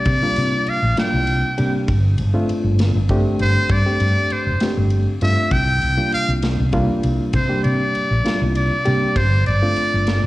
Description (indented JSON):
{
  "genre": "electric jazz fusion",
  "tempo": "66 BPM (dotted quarters)",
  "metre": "6/8",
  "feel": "straight",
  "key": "unclear",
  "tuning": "A4 = 435 Hz",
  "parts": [
    { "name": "trumpet with metal mute", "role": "melody", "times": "0.0-10.3 s", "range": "C5 to G5", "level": "-21 LUFS", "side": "equal", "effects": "plate reverb, slapback echo" },
    { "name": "reed electric piano", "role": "accompaniment", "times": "0.0-10.2 s", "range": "G3 to G4", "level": "-23 LUFS", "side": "equal", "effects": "fast tremolo, plate reverb, slapback echo" },
    { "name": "woody fretless electric bass", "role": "bass", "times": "0.1-10.3 s", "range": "F1 to C3", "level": "-18 LUFS", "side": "equal", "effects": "wide subtle chorus" },
    { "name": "modern studio drum kit", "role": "drums", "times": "0.1-10.2 s", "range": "kick drum, ride cymbal, snare drum", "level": "-26 LUFS", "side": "equal", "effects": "none" }
  ],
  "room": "light reverb",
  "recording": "live gig heard through the venue's PA, cassette tape, recital hall reverb",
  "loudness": "-16 LUFS",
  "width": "side -17 dB against mid",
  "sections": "0.0-10.3 A section",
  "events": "muted trumpet solo 0.0-10.3",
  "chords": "0.0 C9sus4; 1.9 G9sus4; 5.5 C9sus4; 9.2 G9sus4"
}